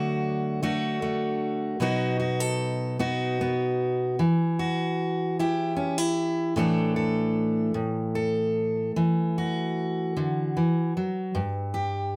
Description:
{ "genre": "folk, solo fingerstyle acoustic guitar", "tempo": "50 BPM (dotted quarters)", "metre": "6/8", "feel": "straight", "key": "D major", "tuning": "A4 = 444 Hz", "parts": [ { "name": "fingerpicked steel-string acoustic guitar", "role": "solo", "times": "0.0-12.2 s", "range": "G2 to A4", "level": "-26 LUFS", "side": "equal", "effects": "none" } ], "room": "light reverb", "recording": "none", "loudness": "-27 LUFS", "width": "mono", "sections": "0.0-12.2 A section", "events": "none", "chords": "0.0 D; 1.8 B; 4.2 Em; 6.6 Asus4; 7.8 A5; 9.0 Dadd9; 11.4 N.C.", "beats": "0.61 | 1.80 2.99 | 4.18 5.37 | 6.57 7.76 | 8.96 10.16 | 11.36" }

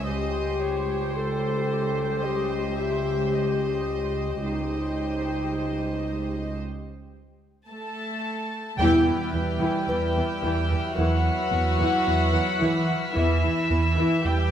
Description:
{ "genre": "cinematic, suspense film score", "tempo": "55 BPM", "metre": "4/4", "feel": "straight", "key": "unclear", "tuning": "A4 = 440 Hz", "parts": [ { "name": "warm studio violin section", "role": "melody", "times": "0.0-14.5 s", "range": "C5 to A5", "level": "-31 LUFS", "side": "left 1 dB", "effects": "none" }, { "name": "warm symphonic violin section", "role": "second line", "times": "0.0-14.5 s", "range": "E4 to E5", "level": "-34 LUFS", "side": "left 1 dB", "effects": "none" }, { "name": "dark symphonic viola section", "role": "accompaniment", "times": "0.0-14.3 s", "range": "E3 to G4", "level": "-30 LUFS", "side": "equal", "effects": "none" }, { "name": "warbly tape-like pad", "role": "sustained chords", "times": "0.0-14.5 s", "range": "E4 to C6", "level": "-34 LUFS", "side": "left 1 dB", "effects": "chorus, built-in reverb" }, { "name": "warm symphonic cello section", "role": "bass", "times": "0.0-14.5 s", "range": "C#2 to A3", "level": "-32 LUFS", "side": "right 2 dB", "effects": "none" }, { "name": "warm symphonic double bass section", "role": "bass", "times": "0.0-14.3 s", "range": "C#2 to E2", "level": "-33 LUFS", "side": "right 2 dB", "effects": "none" }, { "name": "dark clarinet", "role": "second line", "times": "0.1-6.6 s", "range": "Eb4 to A4", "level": "-28 LUFS", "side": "left 3 dB", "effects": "none" }, { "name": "mellow French horn section", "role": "sustained chords", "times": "8.8-13.6 s", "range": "B3 to E4", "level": "-32 LUFS", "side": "left 5 dB", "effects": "none" }, { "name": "smooth synth bass", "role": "riff", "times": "8.8-14.5 s", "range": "E2 to E3", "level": "-26 LUFS", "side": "right 2 dB", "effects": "none" }, { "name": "timpani", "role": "percussion", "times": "8.8-10.4 s", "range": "E2", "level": "-37 LUFS", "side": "equal", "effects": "none" }, { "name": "warm studio violin section", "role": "texture", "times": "8.8-14.5 s", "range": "E6 to B6", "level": "-36 LUFS", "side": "left 2 dB", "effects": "none" }, { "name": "music box", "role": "texture", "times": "9.9-13.1 s", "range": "B4 to B5", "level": "-33 LUFS", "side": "left 3 dB", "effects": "none" } ], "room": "wet scoring stage reverb, RT60 1.5 s", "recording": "none", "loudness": "-22 LUFS", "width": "side -9 dB against mid", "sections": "0.0-8.8 A section; 8.8-14.5 B section", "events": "break 6.6-8.8; band accent 8.8-9.9", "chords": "0.1 Cm/C#; 8.8 Em", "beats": "| 0.07 1.16 2.25 3.35 | 4.44 5.53 6.62 7.71 | 8.80 9.89 10.98 12.07 | 13.16 14.26" }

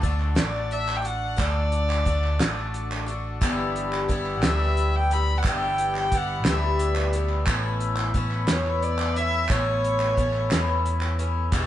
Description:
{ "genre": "indie folk with a building arrangement", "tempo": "59 BPM (dotted quarters)", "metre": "6/8", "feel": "straight", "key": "unclear", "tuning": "A4 = 440 Hz", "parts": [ { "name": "picked twelve-string acoustic guitar", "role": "accompaniment", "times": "0.0-11.7 s", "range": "E2 to F#4", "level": "-29 LUFS", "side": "left 4 dB", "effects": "none" }, { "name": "hand-pumped harmonium", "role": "sustained chords", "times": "0.0-11.7 s", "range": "D3 to F#5", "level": "-36 LUFS", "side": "right 2 dB", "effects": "none" }, { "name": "picked electric bass", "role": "bass", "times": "0.0-11.7 s", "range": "E1 to E2", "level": "-26 LUFS", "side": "equal", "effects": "none" }, { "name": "cloth-damped thuddy drum kit", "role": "drums", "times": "0.0-11.7 s", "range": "hi-hat, kick drum, snare drum", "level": "-25 LUFS", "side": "right 1 dB", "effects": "none" }, { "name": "group handclap", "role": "percussion", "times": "0.2-11.7 s", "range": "none", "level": "-32 LUFS", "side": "right 3 dB", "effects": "none" }, { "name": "dark fiddle", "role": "melody", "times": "0.4-11.2 s", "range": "C#5 to B5", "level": "-27 LUFS", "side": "equal", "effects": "none" } ], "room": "moderate studio reverb, RT60 0.6 s", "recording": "band playing live in one room, nothing above 10.6 kHz", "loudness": "-22 LUFS", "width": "side -12 dB against mid", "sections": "0.0-11.7 A section", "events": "none", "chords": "0.0 D; 3.4 G6; 7.5 Aadd9", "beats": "0.37 | 1.39 2.40 | 3.42 4.43 | 5.44 6.46 | 7.47 8.48 | 9.49 10.51 | 11.52" }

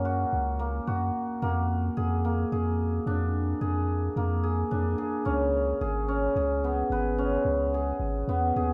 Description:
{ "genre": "contemporary instrumental, chamber music in an uneven meter", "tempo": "110 BPM", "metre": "7/4", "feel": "straight", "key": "unclear", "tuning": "A4 = 442 Hz", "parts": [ { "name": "cimbalom", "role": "arpeggios", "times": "0.0-8.7 s", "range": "A#3 to B4", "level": "-30 LUFS", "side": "equal", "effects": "none" }, { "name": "punchy sub bass", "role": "bass", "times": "0.0-8.7 s", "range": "G#1 to F#2", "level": "-31 LUFS", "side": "equal", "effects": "none" } ], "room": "light reverb", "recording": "dark, warm production", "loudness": "-28 LUFS", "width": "mono", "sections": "0.0-8.7 A section", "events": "none", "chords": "0.0 F#; 1.4 A#7/E#; 5.3 C#7(no3)", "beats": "0.33 0.88 | 1.43 1.98 2.52 3.07 3.62 4.17 4.72 | 5.26 5.81 6.36 6.91 7.46 8.00 8.55" }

